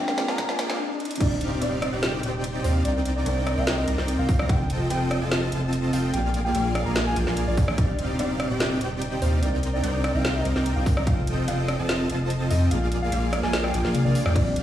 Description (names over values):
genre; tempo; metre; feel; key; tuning
future bass; 146 BPM; 4/4; half-time; Eb major; A4 = 440 Hz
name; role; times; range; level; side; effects
soft octave-layered synth lead; melody; 0.0-14.6 s; C5 to Bb5; -32 LUFS; left 1 dB; chorus, sidechain pumping, dub echo
glassy digital keys; accompaniment; 0.0-1.2, 14.3-14.6 s; F3 to D5; -32 LUFS; left 2 dB; chorus, vintage 12-bit sampler grit, sidechain pumping
dense compressed supersaw; riff; 0.0-14.6 s; Bb3 to Bb5; -26 LUFS; equal; sidechain pumping
riser; sound effects; 0.0-1.2 s; none; -33 LUFS; equal; none
trap drum kit; drums; 0.1-14.6 s; crash cymbal, hi-hat, rim click, snare drum, toms; -28 LUFS; equal; high-pass filter on snare, high-pass filter on hats, high-pass filter on cymbals, high-pass filter on toms
electronic kick drum; drums; 0.4-1.3, 4.3-4.6, 7.6-7.9, 10.9-11.2, 14.4 s; none; -22 LUFS; equal; none
saturated sub bass; bass; 1.2-14.6 s; Eb1 to F2; -26 LUFS; equal; sidechain pumping
room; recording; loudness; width
light reverb; played on a big sound system in a bare room, large studio reverb, high-pass filter, studio reverb; -22 LUFS; side -11 dB against mid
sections
0.0-1.2 A section; 1.2-14.6 B section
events
build-up 0.0-1.2; drum fill 0.0-0.8, 1.0, 13.9-14.4; riser 0.0-1.2; stop 0.8-1.2; drop 1.2-14.6; kick drops out 13.9-14.4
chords
0.0 Bb7; 1.2 Ebmaj13; 2.8 Cm9; 4.5 F9; 6.1 Bb7; 7.8 Ebmaj13; 9.4 Cm9; 11.1 F9; 12.7 Bb7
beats
0.38 0.79 | 1.20 1.61 2.03 2.44 | 2.85 3.26 3.67 4.08 | 4.49 4.90 5.31 5.72 | 6.14 6.55 6.96 7.37 | 7.78 8.19 8.60 9.01 | 9.42 9.84 10.24 10.66 | 11.07 11.48 11.89 12.30 | 12.71 13.12 13.53 13.94 | 14.36